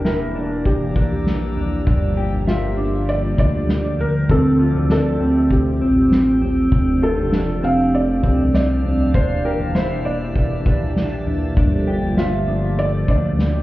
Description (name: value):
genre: dream pop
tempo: 99 BPM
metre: 4/4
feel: straight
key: unclear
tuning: A4 = 440 Hz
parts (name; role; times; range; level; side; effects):
- felt-muted upright piano; melody; 0.0-13.6 s; F4 to F5; -25 LUFS; equal; digital delay
- phased analog pad; sustained chords; 0.0-13.6 s; E3 to E5; -24 LUFS; right 1 dB; phaser, chorus
- mellow electric guitar; arpeggios; 0.0-13.6 s; C4 to E5; -22 LUFS; equal; wide subtle chorus, digital delay
- fat analog bass; bass; 0.0-13.6 s; E1 to D2; -22 LUFS; equal; none
- soft-mallet drum kit; drums; 0.0-13.5 s; kick drum, snare drum, toms; -21 LUFS; equal; none
- drifting glass-harmonics texture; texture; 0.5-13.6 s; D5 to E6; -38 LUFS; right 1 dB; chorus, built-in reverb, digital delay
room: moderate plate reverb, RT60 1.5 s, small room reverb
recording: heard muffled through a wall, club reverb, EQ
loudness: -16 LUFS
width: side -16 dB against mid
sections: 0.0-13.6 A section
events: none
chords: 0.0 Em7b5; 1.9 Gm7; 4.3 Dm11; 6.7 F69; 9.1 Em7b5; 11.6 Gm9